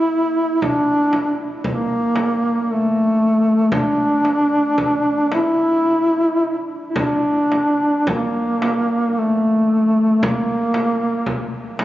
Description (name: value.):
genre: caucasian folk, Caucasian lament.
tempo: 56 BPM.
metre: 3/4.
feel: uneven beats, rubato.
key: unclear.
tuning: A4 = 440 Hz.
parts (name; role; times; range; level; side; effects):
mellow duduk; melody; 0.0-11.8 s; A3 to E4; -16 LUFS; equal; none.
frame drum; percussion; 0.6-11.8 s; none; -26 LUFS; equal; none.
room: moderate cathedral reverb, RT60 5.1 s.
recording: recorded on a phone in the room, club reverb, nothing above 7.5 kHz.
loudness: -16 LUFS.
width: side -14 dB against mid.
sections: 0.0-11.8 A section.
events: none.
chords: none.